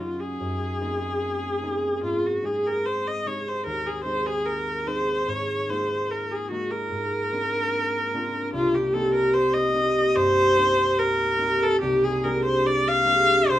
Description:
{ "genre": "classical, impressionist duo for viola and harp", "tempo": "73 BPM", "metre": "4/4", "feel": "rubato", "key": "unclear", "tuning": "A4 = 436 Hz", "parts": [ { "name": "clear viola", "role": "melody", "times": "0.0-13.6 s", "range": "F4 to F5", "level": "-24 LUFS", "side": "left 1 dB", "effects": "none" }, { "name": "concert harp", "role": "accompaniment", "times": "0.0-13.6 s", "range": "C2 to Ab4", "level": "-25 LUFS", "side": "equal", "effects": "none" } ], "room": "moderate large studio reverb, RT60 0.8 s", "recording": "minimal, uncompressed stereo recording", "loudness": "-21 LUFS", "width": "side -13 dB against mid", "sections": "0.0-13.6 A section", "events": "none", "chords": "0.4 Abadd9/Gb; 2.0 Ab; 5.3 Ebsus24/Ab; 6.9 Bbadd9/Ab; 8.5 Cm9; 11.8 Bb13/C" }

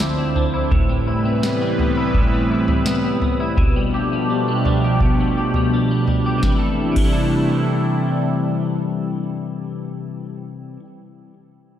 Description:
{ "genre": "dream pop", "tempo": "84 BPM", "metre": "4/4", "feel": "straight", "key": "C major", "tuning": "A4 = 440 Hz", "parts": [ { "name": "phased analog pad", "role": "sustained chords", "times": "0.0-10.1 s", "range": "D2 to C5", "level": "-21 LUFS", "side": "right 1 dB", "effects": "phaser, chorus" }, { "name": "clean electric guitar", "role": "arpeggios", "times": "0.0-10.9 s", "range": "A2 to A4", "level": "-22 LUFS", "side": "left 3 dB", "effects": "analog chorus, tape echo" }, { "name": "booming analog drum machine", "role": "drums", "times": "0.0-7.2 s", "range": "crash cymbal, kick drum, snare drum, toms", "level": "-21 LUFS", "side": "equal", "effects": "none" } ], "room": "wet lush hall reverb, RT60 1.9 s", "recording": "big arena sound", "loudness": "-17 LUFS", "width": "side -10 dB against mid", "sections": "0.0-6.4 A section; 6.4-9.3 B section", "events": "none", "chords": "0.0 Dm9; 0.7 Am9; 3.6 G7/B; 6.4 C6" }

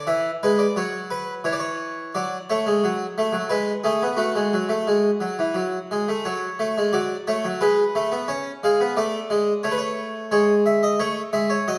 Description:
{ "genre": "classical, baroque-style two-part invention for harpsichord", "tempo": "88 BPM", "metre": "3/4", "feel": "straight", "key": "F# minor", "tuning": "A4 = 439 Hz", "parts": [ { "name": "harpsichord", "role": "solo", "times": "0.0-11.8 s", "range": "E3 to E#5", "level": "-23 LUFS", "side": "equal", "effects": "none" } ], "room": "wet recital hall reverb, RT60 1.4 s", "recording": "none", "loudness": "-23 LUFS", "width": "mono", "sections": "0.0-2.1 A section; 2.1-6.3 B section; 6.3-11.8 C section", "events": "none", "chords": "0.1 E7; 1.5 C#m/E; 2.1 F#madd9; 2.8 F#m; 3.5 G#m; 4.2 F#m; 7.6 G#m; 8.3 C#7; 9.7 Aadd9; 10.3 C#m/G#" }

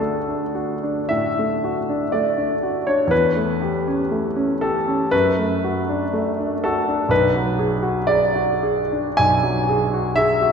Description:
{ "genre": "classical, romantic nocturne for solo piano", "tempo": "50-64 BPM", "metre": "4/4", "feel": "rubato", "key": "unclear", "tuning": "A4 = 440 Hz", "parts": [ { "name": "clear grand piano", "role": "solo", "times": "0.0-10.5 s", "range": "B1 to G#5", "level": "-18 LUFS", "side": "equal", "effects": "none" } ], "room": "wet church reverb, RT60 2.7 s", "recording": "recorded in a church or concert hall", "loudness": "-18 LUFS", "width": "side -6 dB against mid", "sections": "0.0-10.5 A section", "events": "none", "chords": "0.0 D; 3.1 A7/E; 5.1 D/F#; 7.1 G#m7b5/B" }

